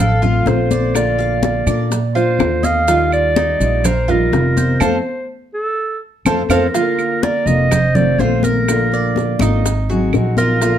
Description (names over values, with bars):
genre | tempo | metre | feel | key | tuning
latin, Cuban son and guajira | 124 BPM | 4/4 | straight | Bb major | A4 = 440 Hz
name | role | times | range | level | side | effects
mellow clarinet | melody | 0.0-10.8 s | A4 to F5 | -18 LUFS | right 1 dB | none
fingerpicked steel-string acoustic guitar | accompaniment | 0.0-10.8 s | D3 to Ab4 | -21 LUFS | left 3 dB | none
Cuban tres | arpeggios | 0.0-10.8 s | Eb4 to F5 | -22 LUFS | right 4 dB | none
upright bass | bass | 0.0-10.8 s | F1 to Bb2 | -18 LUFS | right 1 dB | none
congas | percussion | 0.2-10.8 s | none | -22 LUFS | left 2 dB | none
maracas | percussion | 0.2-10.8 s | none | -29 LUFS | right 5 dB | none
bongos | percussion | 0.5-10.8 s | none | -25 LUFS | left 6 dB | none
claves | percussion | 0.9-10.4 s | none | -29 LUFS | right 5 dB | none
room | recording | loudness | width
moderate studio reverb, RT60 0.8 s | dark, warm production | -13 LUFS | side -10 dB against mid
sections
0.0-6.7 A section; 6.7-10.8 B section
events
band accent 4.8-6.7; drum fill 5.8-6.7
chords
0.0 Dm7; 0.9 Bb; 2.9 Ebadd9; 4.8 F; 6.7 Bb; 7.7 F7; 8.7 Bb; 9.6 Ab7